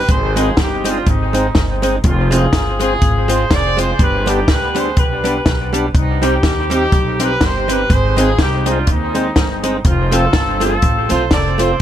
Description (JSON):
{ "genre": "ska", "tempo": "123 BPM", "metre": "4/4", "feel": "swing 57% on 8ths", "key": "unclear", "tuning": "A4 = 440 Hz", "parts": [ { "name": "warm horn section", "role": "melody", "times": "0.0-11.8 s", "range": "C4 to D5", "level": "-19 LUFS", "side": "equal", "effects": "dub echo" }, { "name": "archtop guitar, miked and amplified", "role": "accompaniment", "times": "0.0-11.7 s", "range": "G3 to F4", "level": "-22 LUFS", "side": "right 5 dB", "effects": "dub echo" }, { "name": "upright bass", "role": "bass", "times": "0.1-11.7 s", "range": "F1 to Eb2", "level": "-19 LUFS", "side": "equal", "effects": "none" }, { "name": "compact cocktail drum kit", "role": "drums", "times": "0.1-11.8 s", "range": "hi-hat, kick drum, snare drum", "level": "-16 LUFS", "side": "equal", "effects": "none" }, { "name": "percussive tonewheel organ", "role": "stabs", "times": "0.4-11.7 s", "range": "B3 to C5", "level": "-23 LUFS", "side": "left 5 dB", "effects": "slow rotary speaker, dub echo" } ], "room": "light reverb", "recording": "none", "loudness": "-13 LUFS", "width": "side -11 dB against mid", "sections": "0.0-11.8 A section", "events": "none", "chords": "0.1 Ab; 2.0 Fm; 4.0 G; 5.9 Cm; 7.9 Ab; 9.8 F" }